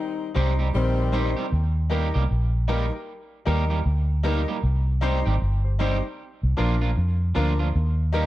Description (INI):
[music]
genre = reggae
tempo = 77 BPM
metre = 4/4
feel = swing 61% on 16ths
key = Eb major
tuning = A4 = 440 Hz
[part]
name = warm horn section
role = second line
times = 0.0-1.3 s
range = Eb3 to Eb4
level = -28 LUFS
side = left 3 dB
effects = tape echo
[part]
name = bright baby grand piano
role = stabs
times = 0.3-8.3 s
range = D4 to C5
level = -31 LUFS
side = left 5 dB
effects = none
[part]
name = electric guitar at the edge of break-up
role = accompaniment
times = 0.4-8.3 s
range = F3 to G4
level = -30 LUFS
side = right 5 dB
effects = tape echo
[part]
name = vintage muted fingered electric bass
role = bass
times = 0.4-8.3 s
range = G1 to F2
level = -22 LUFS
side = equal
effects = none
[sound]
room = light reverb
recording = dark, warm production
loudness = -21 LUFS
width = side -15 dB against mid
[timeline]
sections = 0.0-7.7 A section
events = none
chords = 0.0 Cm; 1.5 Eb; 4.6 Cm; 6.2 Bb; 7.7 Eb